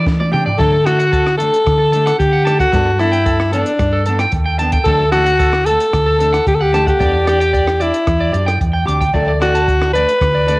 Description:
highlife guitar band; 112 BPM; 4/4; straight; D major; A4 = 441 Hz
electric guitar at the edge of break-up; arpeggios; 0.0-10.6 s; A4 to D6; -20 LUFS; right 2 dB; cassette tape, analog delay
hollow-body short-scale fingered electric bass; bass; 0.0-10.6 s; D2 to E3; -18 LUFS; equal
compact cocktail drum kit; drums; 0.1-10.6 s; hi-hat, kick drum, rim click, snare drum, toms; -20 LUFS; equal; cassette tape
fingerpicked steel-string acoustic guitar; accompaniment; 0.3-10.6 s; F#3 to A4; -24 LUFS; left 2 dB; cassette tape
raspy alto saxophone; melody; 0.6-10.6 s; D4 to B4; -14 LUFS; left 1 dB; cassette tape
light reverb, studio ambience; home recording on cassette; -12 LUFS; side -22 dB against mid
0.6-10.6 A section
drum fill 0.1-0.6
0.0 Em7; 0.6 D; 2.7 Gadd9; 4.9 D; 7.0 Em7; 9.1 D

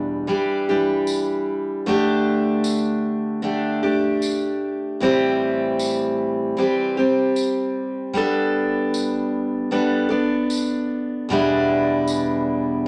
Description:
acoustic folk duo or small band; 76 BPM; 4/4; straight; E minor; A4 = 442 Hz
picked steel-string acoustic guitar; accompaniment; 0.0-12.9 s; E2 to A4; -22 LUFS; equal
tambourine; percussion; 1.1-12.3 s; -35 LUFS; equal
wet studio reverb, RT60 0.8 s; -21 LUFS; mono
0.0-12.9 A section
0.0 Em7; 1.9 Dsus4; 5.0 Am7; 8.1 Gadd9; 11.3 Em7

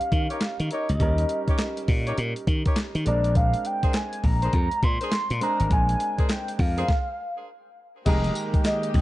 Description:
R&B, new jack swing; 102 BPM; 4/4; swing 63% on 16ths; A4 = 440 Hz
warm velvety synth lead; melody; 0.0-9.0 s; D5 to C6; -28 LUFS; equal; chorus
clear concert grand piano; accompaniment; 0.0-9.0 s; G3 to Bb4; -32 LUFS; right 2 dB
crisp 8-bit digital drum machine; drums; 0.0-9.0 s; crash cymbal, handclaps, hi-hat, kick drum, snare drum, tambourine; -24 LUFS; equal
glassy slap bass; bass; 0.1-9.0 s; F1 to Eb3; -24 LUFS; equal
mellow horn section; stabs; 0.3-8.3 s; D4 to Eb5; -34 LUFS; left 2 dB
group handclap; percussion; 0.4-8.8 s; -43 LUFS; left 3 dB
warm studio string section; sustained chords; 8.1-9.0 s; Eb3 to G4; -33 LUFS; right 1 dB
little or no reverb; dark, warm production, nothing above 10.8 kHz; -22 LUFS; side -16 dB against mid
0.0-8.1 A section
stop 6.9-8.1
0.0 Eb7; 3.1 Bb9; 8.1 Fm11

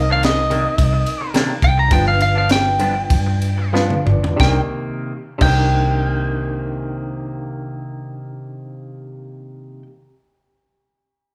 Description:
straight-eighth soul blues; 89-111 BPM; 4/4; straight; C minor; A4 = 440 Hz
lightly driven lead guitar; melody; 0.0-9.8 s; Eb5 to Bb5; -22 LUFS; equal
barky reed electric piano; accompaniment; 0.0-9.8 s; C4 to F5; -29 LUFS; equal; overdrive, fast tremolo
vintage muted fingered electric bass; bass; 0.0-9.8 s; G1 to G2; -22 LUFS; equal
direct-recorded clean electric guitar; stabs; 0.1-9.9 s; G2 to D4; -28 LUFS; equal; spring reverb
tight funk drum kit; drums; 0.2-5.6 s; crash cymbal, kick drum, ride cymbal, snare drum, toms; -22 LUFS; equal
wet large studio reverb, RT60 0.8 s; band playing live in one room; -18 LUFS; mono
0.0-4.4 A section; 4.4-9.8 B section
slowing down 0.0-4.4; reed electric piano fill 3.4-4.4; drum fill 3.7-4.4
0.0 Cm9; 1.9 G7; 4.4 Cm9

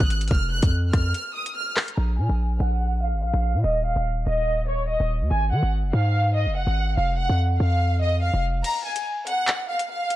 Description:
hip hop, drill; 144 BPM; 4/4; half-time; A4 = 440 Hz
rich studio violin section; melody; 0.0-10.2 s; Db5 to Gb6; -26 LUFS; equal; low-pass filter, tape echo
hard-hitting 808-style bass; bass; 0.0-8.6 s; Eb1 to Eb3; -22 LUFS; equal
drill drum kit; drums; 0.0-2.0, 8.6-10.2 s; crash cymbal, handclaps, hi-hat, kick drum, rim click; -24 LUFS; equal
digital ambience; dark, warm production; -21 LUFS; side -15 dB against mid
0.0-2.0 A section; 2.0-8.6 B section; 8.6-10.2 C section
break 1.1-2.0, 8.6-10.2; filter sweep on violin section 2.0-8.6
0.3 N.C.; 2.0 Bb5; 3.6 N.C.; 5.3 Ab5; 7.0 N.C.

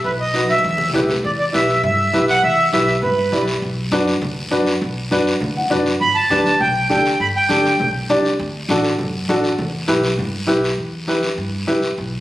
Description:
latin, cumbia; 201 BPM; 4/4; straight; E minor; A4 = 440 Hz
accordion; melody; 0.0-3.4, 6.0-7.9 s; B4 to B5; -17 LUFS; right 1 dB
upright bass; bass; 0.0-12.2 s; G1 to G2; -25 LUFS; equal
guiro; percussion; 0.0-12.2 s; -28 LUFS; left 1 dB
warm upright piano; accompaniment; 0.3-11.9 s; D4 to F#5; -19 LUFS; equal
congas; percussion; 0.3-11.8 s; -29 LUFS; equal
light reverb; recorded on a phone in the room, studio reverb, compression; -15 LUFS; side -15 dB against mid
0.0-1.2 A section; 1.2-10.8 B section; 10.8-12.2 C section
drum fill 0.5-1.2; upright piano fill 5.4-6.0
0.0 B; 0.6 Em; 3.6 Bm; 6.0 G; 8.4 D; 9.6 Em

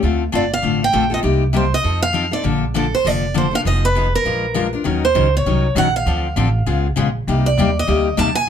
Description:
acoustic string swing (jazz manouche); 199 BPM; 4/4; swing 58% on 8ths; Bb major; A4 = 441 Hz
picked steel-string acoustic guitar; accompaniment; 0.0-8.3 s; C3 to Bb4; -20 LUFS; left 5 dB
upright bass; bass; 0.0-8.5 s; F1 to F2; -20 LUFS; right 1 dB
picked steel-string acoustic guitar; melody; 0.4-8.5 s; A4 to A5; -19 LUFS; right 3 dB
light reverb; -15 LUFS; side -8 dB against mid
0.0-4.9 A section; 4.9-8.5 B section
0.0 Dm7; 1.2 Cm7; 1.8 F7; 2.4 Bbmaj7; 3.7 Fm7b5; 4.3 Bb7; 4.9 Ebm7; 6.1 Dm7; 6.7 Db7; 7.3 Cm7

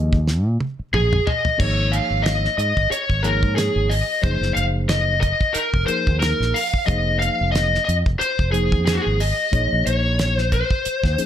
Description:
electric jazz fusion; 91 BPM; 4/4; swing 55% on 16ths; Bb minor; A4 = 438 Hz
mellow tine electric piano; accompaniment; 0.0-11.3 s; F3 to Eb5; -27 LUFS; left 1 dB; slow stereo tremolo, plate reverb
fretless electric bass; bass; 0.0-11.2 s; F1 to Bb2; -21 LUFS; equal
damped 70s drum kit; drums; 0.1-11.3 s; crash cymbal, hi-hat, kick drum, snare drum, toms; -23 LUFS; equal
lead guitar through a small cranked amp; melody; 0.9-11.3 s; Gb4 to F5; -21 LUFS; left 1 dB; overdrive, slapback echo, plate reverb
light reverb; -17 LUFS; side -10 dB against mid
0.0-1.6 A section; 1.6-11.3 B section
drum fill 0.3-1.6
0.0 Bb7(no3); 1.6 Absus24; 4.2 Cm7b5/Gb; 6.9 Fm7; 9.5 Bbm9

